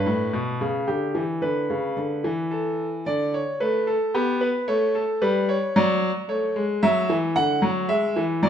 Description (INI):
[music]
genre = classical, baroque-style two-part invention for grand piano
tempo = 112 BPM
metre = 3/4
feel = straight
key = D major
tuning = A4 = 440 Hz
[part]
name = bright concert grand piano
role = solo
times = 0.0-8.5 s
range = A2 to F#5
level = -21 LUFS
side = equal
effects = none
[sound]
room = moderate recital hall reverb, RT60 1.5 s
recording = none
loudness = -21 LUFS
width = side -8 dB against mid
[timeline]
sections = 0.0-3.1 A section; 3.1-8.5 B section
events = none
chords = 0.0 Em7; 1.4 C#m7; 2.5 A5/E; 3.1 D5; 4.1 G/B; 4.7 A7; 5.8 D/F#; 6.3 A; 7.4 D; 7.9 E